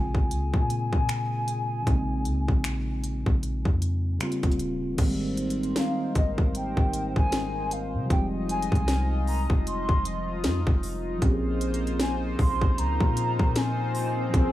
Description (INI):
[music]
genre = contemporary R&B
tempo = 77 BPM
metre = 4/4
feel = swing 58% on 16ths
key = unclear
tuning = A4 = 441 Hz
[part]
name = hollow clarinet-like synth lead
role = melody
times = 0.0-14.5 s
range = Eb5 to C6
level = -32 LUFS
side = equal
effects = chorus, analog delay
[part]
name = mellow tine electric piano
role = accompaniment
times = 0.0-14.5 s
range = Db3 to Ab4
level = -31 LUFS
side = equal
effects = fast stereo tremolo
[part]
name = clean 808-style bass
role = bass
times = 0.0-14.5 s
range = Eb1 to C3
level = -29 LUFS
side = equal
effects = none
[part]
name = trap drum kit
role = drums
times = 0.1-14.5 s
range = crash cymbal, finger snaps, hi-hat, kick drum, snare drum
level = -25 LUFS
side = equal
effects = none
[part]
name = chorused pulse-width pad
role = sustained chords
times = 5.0-14.5 s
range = F3 to Eb5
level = -34 LUFS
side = equal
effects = sidechain pumping
[part]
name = swell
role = sound effects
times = 13.0-14.5 s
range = none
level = -35 LUFS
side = left 3 dB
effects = none
[sound]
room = little or no reverb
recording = dry, gritty hardware recording, small room ambience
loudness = -24 LUFS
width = side -14 dB against mid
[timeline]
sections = 0.0-5.0 A section; 5.0-14.5 B section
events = swell 13.0-14.5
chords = 0.0 Bbm7; 4.2 Eb13; 5.0 Abmaj7; 8.1 Fm7; 11.2 Bbm7